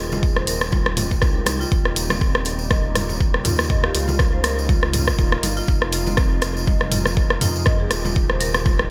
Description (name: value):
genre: afro house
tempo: 121 BPM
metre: 4/4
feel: swing 57% on 16ths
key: F minor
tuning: A4 = 440 Hz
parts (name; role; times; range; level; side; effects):
- warm analog pad; sustained chords; 0.0-8.9 s; C3 to G4; -34 LUFS; equal; subtle chorus, sidechain pumping
- marimba with medium mallets; arpeggios; 0.0-8.8 s; C4 to Eb5; -32 LUFS; equal; sidechain pumping, delay
- smooth synth bass; bass; 0.0-8.9 s; Eb1 to F2; -28 LUFS; equal; sidechain pumping
- congas; percussion; 0.1-8.8 s; none; -33 LUFS; equal; none
- tambourine; percussion; 0.1-8.8 s; none; -33 LUFS; equal; none
- electronic kick drum; drums; 0.2-8.8 s; none; -22 LUFS; equal; none
- deep house drum kit; drums; 0.4-8.9 s; hi-hat, rim click, toms; -25 LUFS; equal; gated reverb
room: light reverb, digital ambience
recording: bright 1980s-style digital production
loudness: -20 LUFS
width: mono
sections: 0.0-8.9 A section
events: none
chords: 0.0 Fm7; 1.7 Eb7; 5.7 Fm7